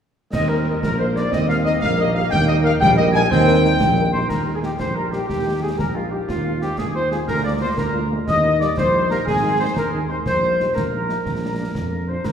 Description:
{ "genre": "military-style march for wind band", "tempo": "121 BPM (dotted quarters)", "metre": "6/8", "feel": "straight", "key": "Eb major", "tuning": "A4 = 440 Hz", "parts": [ { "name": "dark trumpet section", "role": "melody", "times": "0.3-12.3 s", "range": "F4 to Ab5", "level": "-27 LUFS", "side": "left 1 dB", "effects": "none" }, { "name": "clear woodwind section", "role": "second line", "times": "0.3-12.3 s", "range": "F4 to Ab5", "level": "-24 LUFS", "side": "left 1 dB", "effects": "none" }, { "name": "mellow flute section", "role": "second line", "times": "0.3-12.3 s", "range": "Bb4 to Eb6", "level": "-25 LUFS", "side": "left 2 dB", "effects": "none" }, { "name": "warm trombone section", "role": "sustained chords", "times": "0.3-12.2 s", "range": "F3 to Eb4", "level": "-27 LUFS", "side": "right 2 dB", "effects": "none" }, { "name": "mellow tuba", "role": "bass", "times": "0.3-12.3 s", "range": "Ab1 to F2", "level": "-22 LUFS", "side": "right 2 dB", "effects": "none" }, { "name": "concert snare drum, clash cymbals and concert bass drum", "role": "drums", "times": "0.3-12.3 s", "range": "none", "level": "-26 LUFS", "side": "equal", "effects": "none" }, { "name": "mellow French horn section", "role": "accompaniment", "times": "0.5-12.1 s", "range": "F3 to Bb4", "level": "-28 LUFS", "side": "left 3 dB", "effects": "none" } ], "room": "wet scoring stage reverb, RT60 2.1 s", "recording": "heard from further back in the room", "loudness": "-17 LUFS", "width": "side -8 dB against mid", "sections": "0.3-4.3 A section; 4.3-12.3 B section", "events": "none", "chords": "0.3 Eb; 6.3 Fm7/Eb; 7.3 Bb7/D; 8.3 Eb; 9.3 Ab; 10.3 Eb/Bb; 11.3 Bb" }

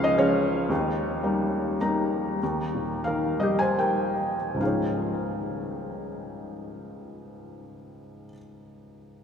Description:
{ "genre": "classical, lyrical solo piano", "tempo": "65-116 BPM", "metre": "3/4", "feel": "rubato", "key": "Db lydian", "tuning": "A4 = 440 Hz", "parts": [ { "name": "felt-muted upright piano", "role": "solo", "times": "0.0-9.2 s", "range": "Db2 to Bb5", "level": "-24 LUFS", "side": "left 1 dB", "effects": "none" } ], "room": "wet cathedral reverb, RT60 6.4 s", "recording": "in a vast, echoing space, studio reverb", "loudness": "-24 LUFS", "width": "side -7 dB against mid", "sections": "0.0-2.4 A section; 2.4-4.6 B section; 4.6-9.2 C section", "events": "slowing down 0.7-4.6; felt piano fill 1.5-2.4", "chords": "0.0 Db; 0.7 Eb; 4.6 Dbadd9" }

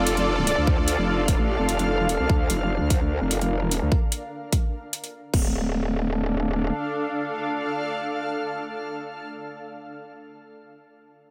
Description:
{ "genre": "heavy wobble dubstep", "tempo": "148 BPM", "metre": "4/4", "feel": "half-time", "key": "D minor", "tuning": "A4 = 440 Hz", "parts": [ { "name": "supersaw pad", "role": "sustained chords", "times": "0.0-2.3 s", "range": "F4 to D5", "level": "-30 LUFS", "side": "equal", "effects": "sidechain pumping" }, { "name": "growl bass", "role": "bass", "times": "0.0-6.7 s", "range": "D1 to D2", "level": "-26 LUFS", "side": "equal", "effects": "chorus, overdrive" }, { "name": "granular cloud pad", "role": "texture", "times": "0.2-9.5 s", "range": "D4 to F5", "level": "-32 LUFS", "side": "equal", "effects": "built-in reverb, sidechain pumping" }, { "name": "big-room dance drum kit", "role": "drums", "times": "0.1-5.4 s", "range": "crash cymbal, hi-hat", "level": "-32 LUFS", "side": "equal", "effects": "overdrive, small room ambience" }, { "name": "warm brass ensemble", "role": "stabs", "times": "0.2-0.6 s", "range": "D4 to D5", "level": "-33 LUFS", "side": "equal", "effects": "none" }, { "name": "electronic kick drum", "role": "drums", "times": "0.7-5.4 s", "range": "none", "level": "-24 LUFS", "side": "equal", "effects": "overdrive, small room ambience" } ], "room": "moderate lush hall reverb, RT60 1.6 s, digital ambience", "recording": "none", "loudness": "-25 LUFS", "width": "mono", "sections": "0.0-5.5 A section; 5.5-8.8 B section", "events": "none", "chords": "0.0 Dm; 2.3 Bb; 5.3 D5" }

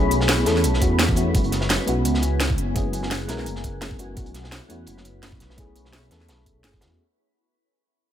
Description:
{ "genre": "liquid drum and bass", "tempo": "170 BPM", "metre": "4/4", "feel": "swing 53% on 16ths", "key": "unclear", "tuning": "A4 = 440 Hz", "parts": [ { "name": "mellow FM electric piano", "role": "accompaniment", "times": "0.0-7.0 s", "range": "G#3 to A#4", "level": "-26 LUFS", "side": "left 3 dB", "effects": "chorus, tape echo" }, { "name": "shimmering ambient pad", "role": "sustained chords", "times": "0.0-7.0 s", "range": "B3 to B5", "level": "-29 LUFS", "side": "right 2 dB", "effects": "chorus, built-in reverb, phaser, sidechain pumping" }, { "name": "dark detuned saw bass", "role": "bass", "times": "0.0-7.0 s", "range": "F#1 to E2", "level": "-25 LUFS", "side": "equal", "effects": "none" }, { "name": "crunchy breakbeat drum kit", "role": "drums", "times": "0.1-6.9 s", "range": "hi-hat, snare drum", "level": "-31 LUFS", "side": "right 1 dB", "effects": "high-pass filter on hats, high-pass filter on snare, high-pass filter on room" }, { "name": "drum and bass drum kit", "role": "drums", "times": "0.1-6.9 s", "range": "hi-hat, snare drum", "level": "-25 LUFS", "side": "right 1 dB", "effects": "none" }, { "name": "electronic kick drum", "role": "drums", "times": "0.8-6.8 s", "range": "none", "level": "-24 LUFS", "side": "equal", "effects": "none" } ], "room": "light reverb, digital ambience", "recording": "none", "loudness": "-19 LUFS", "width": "side -10 dB against mid", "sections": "0.0-7.0 A section", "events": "fade-out 0.0-7.0; filter sweep on ambient pad 0.0-7.0", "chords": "0.0 B9sus4; 1.3 F#9sus4; 4.2 B9sus4" }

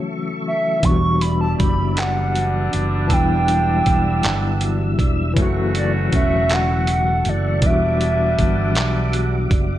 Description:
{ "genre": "slow six-eight R&B", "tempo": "53 BPM (dotted quarters)", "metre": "6/8", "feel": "straight", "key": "E dorian", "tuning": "A4 = 441 Hz", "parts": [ { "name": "hollow clarinet-like synth lead", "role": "melody", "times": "0.0-9.2 s", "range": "D5 to C#6", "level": "-22 LUFS", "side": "right 1 dB", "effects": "chorus, slapback echo" }, { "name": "overdriven tine electric piano", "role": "accompaniment", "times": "0.0-9.8 s", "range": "C#3 to F#4", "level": "-24 LUFS", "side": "left 5 dB", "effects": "medium tremolo" }, { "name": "tonewheel organ", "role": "sustained chords", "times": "0.0-9.8 s", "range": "G3 to E6", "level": "-30 LUFS", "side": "right 1 dB", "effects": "chorus vibrato, slow rotary speaker" }, { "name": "mellow electric guitar", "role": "second line", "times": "0.8-9.8 s", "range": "E3 to A4", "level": "-27 LUFS", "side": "right 4 dB", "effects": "none" }, { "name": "fretless electric bass", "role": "bass", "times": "0.8-9.8 s", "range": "E1 to B1", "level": "-21 LUFS", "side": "right 1 dB", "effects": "none" }, { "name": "dusty soul sampler-style drum kit", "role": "drums", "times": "0.8-9.7 s", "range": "handclaps, hi-hat, kick drum", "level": "-21 LUFS", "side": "right 1 dB", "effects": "none" }, { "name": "warm horn section", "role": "stabs", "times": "2.0-9.5 s", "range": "C#3 to F#4", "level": "-29 LUFS", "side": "right 1 dB", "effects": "none" } ], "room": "digital ambience", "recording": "none", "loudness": "-16 LUFS", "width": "side -13 dB against mid", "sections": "0.0-9.8 A section", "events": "none", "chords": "0.0 F#m7; 0.8 Em9; 5.4 F#m7; 7.6 Em9" }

